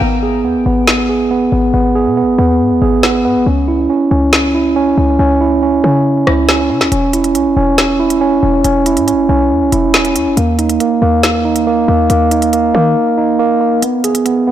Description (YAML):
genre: hip hop, drill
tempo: 139 BPM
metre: 4/4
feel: half-time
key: G# minor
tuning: A4 = 441 Hz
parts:
  - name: mellow tine electric piano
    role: arpeggios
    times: 0.0-14.5 s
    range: A#3 to G#4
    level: -11 LUFS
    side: right 2 dB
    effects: auto-pan, tape echo
  - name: short 808-style bass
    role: bass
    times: 0.0-13.0 s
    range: E1 to D#3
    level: -17 LUFS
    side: left 1 dB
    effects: none
  - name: drill drum kit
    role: drums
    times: 0.9-14.4 s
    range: hi-hat, rim click, snare drum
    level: -15 LUFS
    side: left 1 dB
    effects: none
room: light reverb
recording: blown-out, overdriven recording, overdrive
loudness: -10 LUFS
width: side -11 dB against mid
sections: 0.0-14.5 A section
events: break 0.0-6.9; hi-hats muted 5.2-6.9; drums muted 13.0-13.8; kick muted 13.8-14.5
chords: 0.0 G#m; 3.5 C#m; 6.9 E5; 10.4 D#5; 13.8 G#m